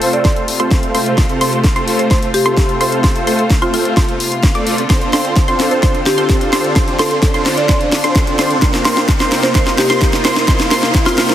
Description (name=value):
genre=EDM, festival progressive house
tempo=129 BPM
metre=4/4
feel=straight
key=F major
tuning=A4 = 440 Hz
part: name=warm studio string section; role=sustained chords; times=0.0-11.3 s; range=C3 to F4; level=-22 LUFS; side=left 1 dB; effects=sidechain pumping, low-pass filter
part: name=wide unison pluck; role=arpeggios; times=0.0-11.3 s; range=C6 to D6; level=-21 LUFS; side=right 1 dB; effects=sidechain pumping, dub echo
part: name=supersaw chords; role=riff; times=0.0-11.3 s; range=A3 to D5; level=-18 LUFS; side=equal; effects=sidechain pumping, low-pass filter, dub echo
part: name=house drum kit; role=drums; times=0.0-11.3 s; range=hi-hat, snare drum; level=-18 LUFS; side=equal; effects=overdrive
part: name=riser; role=sound effects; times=0.5-11.3 s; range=none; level=-27 LUFS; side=right 2 dB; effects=none
part: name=buzzing marimba with medium hard mallets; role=melody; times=0.1-11.3 s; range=F4 to D5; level=-20 LUFS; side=right 1 dB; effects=dub echo
part: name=electronic kick drum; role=drums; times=0.2-11.0 s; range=none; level=-14 LUFS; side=equal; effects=none
room=moderate lush hall reverb, RT60 2.2 s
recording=heavily compressed radio sound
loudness=-11 LUFS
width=side -11 dB against mid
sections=0.0-11.3 A section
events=build-up 0.0-11.3; drum fill 0.0-11.3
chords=0.0 F; 4.9 Dm7; 8.6 Bbsus2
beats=0.25 0.71 | 1.18 1.64 2.11 2.57 | 3.04 3.50 3.97 4.43 | 4.90 5.37 5.83 6.29 | 6.76 7.22 7.69 8.15 | 8.62 9.09 9.55 10.02 | 10.48 10.95